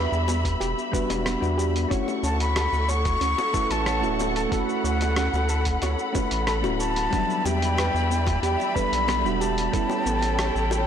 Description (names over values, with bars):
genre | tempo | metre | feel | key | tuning
sunset chillout | 92 BPM | 4/4 | straight | D major | A4 = 440 Hz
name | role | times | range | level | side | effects
soft electric-piano-like synth keys | accompaniment | 0.0-10.9 s | F#3 to B4 | -29 LUFS | moving between left 6 dB and right 7 dB | chorus, auto-pan, ping-pong delay, shimmer reverb
dark studio string section | sustained chords | 0.0-10.9 s | E3 to C#6 | -29 LUFS | left 2 dB | shimmer reverb
soft round pluck | arpeggios | 0.0-10.9 s | B3 to C#5 | -33 LUFS | right 3 dB | analog chorus, ping-pong delay, shimmer reverb
round analog bass | bass | 0.0-10.9 s | D1 to E2 | -26 LUFS | equal | none
dusty soul sampler-style drum kit | drums | 0.1-10.9 s | cabasa, hi-hat, rim click | -32 LUFS | equal | overdrive, soft clipping on snare
bongos | percussion | 0.3-10.8 s | none | -37 LUFS | left 4 dB | none
electronic kick drum | drums | 0.4-9.9 s | none | -28 LUFS | equal | overdrive
breathy jazz flute | melody | 2.2-10.9 s | F#5 to C#6 | -28 LUFS | left 2 dB | digital delay, shimmer reverb
room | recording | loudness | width
moderate lush hall reverb, RT60 1.9 s, digital ambience | blown-out, overdriven recording, overdrive | -21 LUFS | side -8 dB against mid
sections
0.0-10.9 A section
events
none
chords
0.0 Em7; 1.9 Dmaj7; 7.1 Em7; 9.7 A9